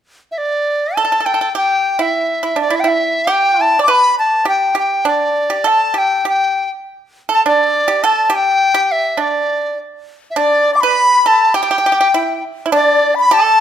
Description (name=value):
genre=chinese traditional, Chinese chamber ensemble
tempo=102 BPM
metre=2/4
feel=rubato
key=D zhi mode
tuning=A4 = 440 Hz
part: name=bright reedy large dizi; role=melody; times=0.3-13.6 s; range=D5 to D6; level=-13 LUFS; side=left 1 dB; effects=none
part: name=pipa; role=second line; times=1.0-13.6 s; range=D4 to D5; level=-18 LUFS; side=right 5 dB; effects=none
part: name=bright large dizi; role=second line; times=10.4-13.6 s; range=D5 to D6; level=-16 LUFS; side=left 6 dB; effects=none
room=moderate recital hall reverb, RT60 1.4 s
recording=none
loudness=-12 LUFS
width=side -9 dB against mid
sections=1.0-10.4 A section; 10.4-13.6 B section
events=none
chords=none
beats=0.37 | 0.96 1.55 | 2.14 2.73 | 3.31 3.89 | 4.48 5.07 | 5.67 6.28 | 6.87 7.46 | 8.04 8.61 | 9.19 9.78 | 10.37 10.97 | 11.56 12.14 | 12.72 13.30